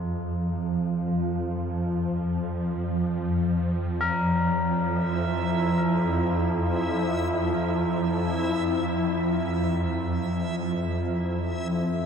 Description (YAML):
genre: dark ambient drone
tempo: free time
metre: none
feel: none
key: unclear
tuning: A4 = 438 Hz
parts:
  - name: tubular bells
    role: arpeggios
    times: 0.0-12.1 s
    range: Eb4 to Bb4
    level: -34 LUFS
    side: left 1 dB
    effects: ping-pong delay
  - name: swarming drone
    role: drone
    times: 0.0-12.1 s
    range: F2 to F3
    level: -25 LUFS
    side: equal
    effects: built-in reverb
  - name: backwards swelling texture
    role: texture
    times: 5.0-12.1 s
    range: E4 to E5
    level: -30 LUFS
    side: left 1 dB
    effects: built-in reverb
room: wet cathedral reverb, RT60 5.2 s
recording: in a vast, echoing space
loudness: -24 LUFS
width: side -7 dB against mid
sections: 0.0-12.1 A section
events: none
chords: 0.0 Ebsus2/F; 4.0 Fsus4